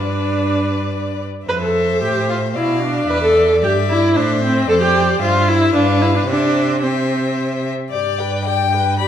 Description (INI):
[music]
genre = quick classical-period movement for string quartet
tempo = 111 BPM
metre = 3/4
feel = straight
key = C major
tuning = A4 = 442 Hz
[part]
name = rich violin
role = melody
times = 0.0-9.1 s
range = D5 to B5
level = -24 LUFS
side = left 10 dB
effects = none
[part]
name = clear violin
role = second line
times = 0.0-9.1 s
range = B4 to G5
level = -24 LUFS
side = left 5 dB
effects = none
[part]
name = rich viola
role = accompaniment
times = 0.0-9.1 s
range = C4 to B4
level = -17 LUFS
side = equal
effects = none
[part]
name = clear cello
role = bass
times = 0.0-9.1 s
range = E2 to C3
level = -21 LUFS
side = right 3 dB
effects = none
[sound]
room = wet recital hall reverb, RT60 1.2 s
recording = dark, warm production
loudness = -14 LUFS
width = side -9 dB against mid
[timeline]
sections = 0.0-7.9 A section; 7.9-9.1 B section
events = none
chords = 0.0 G; 1.5 Fmaj7; 2.5 Bdim; 3.1 Em7; 4.1 Am; 4.7 Dm7/F; 5.2 C/G; 5.7 G7; 6.3 C; 7.9 G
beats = 0.39 0.93 | 1.47 2.01 2.55 | 3.08 3.61 4.14 | 4.67 5.20 5.73 | 6.28 6.82 7.37 | 7.92 8.46 8.99